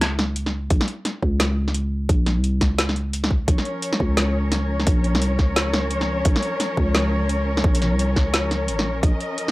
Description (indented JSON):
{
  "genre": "half-time drum and bass",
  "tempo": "173 BPM",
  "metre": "4/4",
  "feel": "swing 60% on 16ths, half-time",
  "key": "Bb minor",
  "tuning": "A4 = 440 Hz",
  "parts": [
    { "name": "growling 808-style bass", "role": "bass", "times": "0.0-9.1 s", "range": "Ab1 to Db2", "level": "-22 LUFS", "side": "equal", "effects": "none" },
    { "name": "drum and bass drum kit", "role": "drums", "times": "0.0-9.5 s", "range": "hi-hat, snare drum", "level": "-23 LUFS", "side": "equal", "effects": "none" },
    { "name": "electronic kick drum", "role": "drums", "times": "0.7-9.1 s", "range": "none", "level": "-20 LUFS", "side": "equal", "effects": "none" },
    { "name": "warm studio cello section", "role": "sustained chords", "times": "3.5-9.5 s", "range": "F3 to Eb5", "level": "-26 LUFS", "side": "left 1 dB", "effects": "sidechain pumping" }
  ],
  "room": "little or no reverb",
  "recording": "dry, gritty hardware recording",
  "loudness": "-19 LUFS",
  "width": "side -19 dB against mid",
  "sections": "0.0-9.5 A section",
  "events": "none",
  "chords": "0.0 Bbm"
}